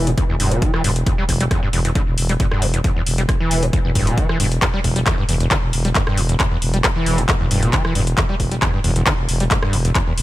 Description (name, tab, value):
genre	driving peak-time techno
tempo	135 BPM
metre	4/4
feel	straight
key	E minor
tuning	A4 = 440 Hz
part	screaming distorted acid line	riff	0.0-10.1 s	E1 to G3	-22 LUFS	equal	distortion, lush chorus, cassette tape, sidechain pumping, ping-pong delay
part	growling FM bass	bass	0.0-10.2 s	D1 to E1	-20 LUFS	equal	sidechain pumping
part	techno drum kit	drums	0.1-10.2 s	handclaps, hi-hat, rim click	-22 LUFS	left 1 dB	sidechain pumping on hats
part	electronic kick drum	drums	0.2-10.0 s	none	-20 LUFS	equal	none
room	little or no reverb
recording	none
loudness	-16 LUFS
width	side -16 dB against mid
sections	0.0-10.2 A section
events	none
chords	0.0 E5